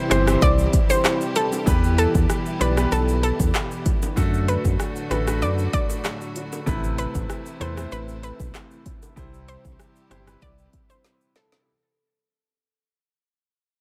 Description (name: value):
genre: dancehall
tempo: 96 BPM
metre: 4/4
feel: straight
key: unclear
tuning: A4 = 441 Hz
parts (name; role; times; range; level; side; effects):
- clear concert grand piano; accompaniment; 0.0-11.7 s; C3 to D5; -30 LUFS; equal; sidechain pumping
- warm studio string section; sustained chords; 0.0-11.6 s; A2 to G4; -34 LUFS; equal; sidechain pumping
- analog pluck; melody; 0.1-11.5 s; A4 to D5; -28 LUFS; equal; chorus, digital delay
- round analog bass; bass; 0.1-10.7 s; G1 to F#2; -25 LUFS; equal; none
- afro-pop drum kit; drums; 0.1-11.7 s; handclaps, hi-hat, kick drum, rim click, shaker, snare drum; -26 LUFS; equal; none
- bongos; percussion; 0.1-11.7 s; none; -38 LUFS; equal; none
room: little or no reverb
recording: none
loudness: -22 LUFS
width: mono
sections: 0.0-11.7 A section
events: fade-out 0.0-11.7; drum fill 11.0-11.7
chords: 0.0 C; 1.7 Em; 4.2 D; 6.7 Amadd9; 9.2 C